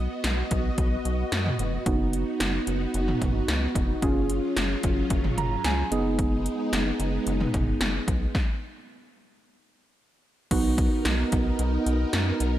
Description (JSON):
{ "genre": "synth-pop", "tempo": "111 BPM", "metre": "4/4", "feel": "straight", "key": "unclear", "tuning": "A4 = 441 Hz", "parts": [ { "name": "string machine, violas", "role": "sustained chords", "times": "0.0-12.6 s", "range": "F#3 to D#5", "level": "-31 LUFS", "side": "equal", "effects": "ensemble chorus" }, { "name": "rubbery square bass", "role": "bass", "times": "0.0-12.6 s", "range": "E#1 to F#2", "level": "-28 LUFS", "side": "equal", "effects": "none" }, { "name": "80s electronic pad drums", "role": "drums", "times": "0.2-12.5 s", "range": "crash cymbal, hi-hat, kick drum, snare drum, toms", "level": "-27 LUFS", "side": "equal", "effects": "gated reverb on snare and toms, overdrive" }, { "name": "muted felt-like synth keys", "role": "accompaniment", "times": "1.9-12.6 s", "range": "B3 to A#5", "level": "-29 LUFS", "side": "right 3 dB", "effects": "chorus" } ], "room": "light reverb, digital ambience", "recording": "none", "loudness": "-23 LUFS", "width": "side -13 dB against mid", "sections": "0.0-1.9 A section; 1.9-10.5 B section; 10.5-12.6 C section", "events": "synth keys fill 5.1-6.2; stop 8.3-10.5", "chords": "0.0 B; 1.9 B/F#; 4.0 C#/F#; 5.9 G#m/F#; 8.3 N.C.; 10.5 Bmaj7", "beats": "0.24 0.78 1.32 | 1.86 2.40 2.94 3.48 | 4.02 4.56 5.11 5.65 | 6.19 6.73 7.27 7.81 | 8.35 8.89 9.43 9.97 | 10.51 11.05 11.59 12.13" }